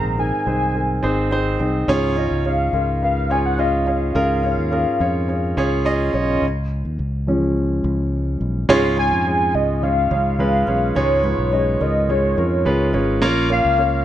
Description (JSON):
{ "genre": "piano-driven pop", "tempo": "106 BPM", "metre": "4/4", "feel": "straight", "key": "unclear", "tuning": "A4 = 436 Hz", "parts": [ { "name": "warm velvety synth lead", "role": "melody", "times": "0.0-14.0 s", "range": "C#5 to A#5", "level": "-21 LUFS", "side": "left 1 dB", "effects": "chorus" }, { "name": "warm grand piano", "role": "accompaniment", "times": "0.0-14.0 s", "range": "G#2 to D#5", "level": "-20 LUFS", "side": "right 1 dB", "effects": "none" }, { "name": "fingered electric bass", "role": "bass", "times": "0.0-14.0 s", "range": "G#1 to E#2", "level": "-22 LUFS", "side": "equal", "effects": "none" } ], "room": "moderate large studio reverb, RT60 1.1 s, small room reverb", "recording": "none", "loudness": "-17 LUFS", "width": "side -12 dB against mid", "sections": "0.0-6.4 A section; 6.4-8.7 B section; 8.7-14.0 C section", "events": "grand piano solo 6.4-8.7", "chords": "0.0 G#add9; 1.9 C#; 13.2 A#m" }